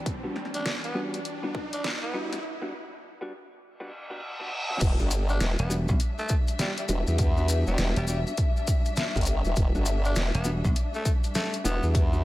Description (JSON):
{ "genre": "glitch hop", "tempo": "101 BPM", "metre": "4/4", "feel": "swing 62% on 16ths", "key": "E minor", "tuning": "A4 = 437 Hz", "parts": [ { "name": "dark chamber string section", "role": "sustained chords", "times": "0.0-12.2 s", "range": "E3 to E5", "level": "-36 LUFS", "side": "left 3 dB", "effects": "sidechain pumping" }, { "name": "riser and reverse cymbal", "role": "sound effects", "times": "0.0-4.8 s", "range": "none", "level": "-35 LUFS", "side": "equal", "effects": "none" }, { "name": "dubstep drum kit", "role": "drums", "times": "0.1-12.1 s", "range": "crash cymbal, hi-hat, snare drum", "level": "-32 LUFS", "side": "equal", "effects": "none" }, { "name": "electronic kick drum", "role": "drums", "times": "0.1-12.1 s", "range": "none", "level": "-25 LUFS", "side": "equal", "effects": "none" }, { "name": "clean electric guitar", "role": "stabs", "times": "0.2-12.2 s", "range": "G3 to F#4", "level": "-36 LUFS", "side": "equal", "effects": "vintage 12-bit sampler grit, sidechain pumping, dub echo" }, { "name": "growling tenor saxophone", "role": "melody", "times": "0.5-11.9 s", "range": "G3 to D4", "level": "-35 LUFS", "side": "equal", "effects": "dub echo" }, { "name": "formant-sweep wobble bass", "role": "bass", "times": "4.8-12.2 s", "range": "E1 to E2", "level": "-25 LUFS", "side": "equal", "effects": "chorus" }, { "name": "maracas", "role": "percussion", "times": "4.8-12.2 s", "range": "none", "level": "-38 LUFS", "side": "left 4 dB", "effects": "none" }, { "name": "dry thumbed slap bass", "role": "bass", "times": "5.6-10.7 s", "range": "E1 to B1", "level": "-27 LUFS", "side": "equal", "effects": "none" } ], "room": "digital ambience", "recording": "high-pass filter", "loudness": "-24 LUFS", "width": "side -17 dB against mid", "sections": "0.0-4.8 A section; 4.8-12.2 B section", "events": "build-up 0.0-4.8; riser 0.0-2.4; filter sweep 0.0-4.8; break 2.4-4.8; reverse cymbal 3.9-4.8; drop 4.8-12.2", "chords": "0.0 Em7", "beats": "| 0.06 0.66 1.25 1.84 | 2.44 3.03 3.63 4.22 | 4.82 5.41 6.00 6.60 | 7.19 7.79 8.38 8.97 | 9.57 10.16 10.76 11.35 | 11.94" }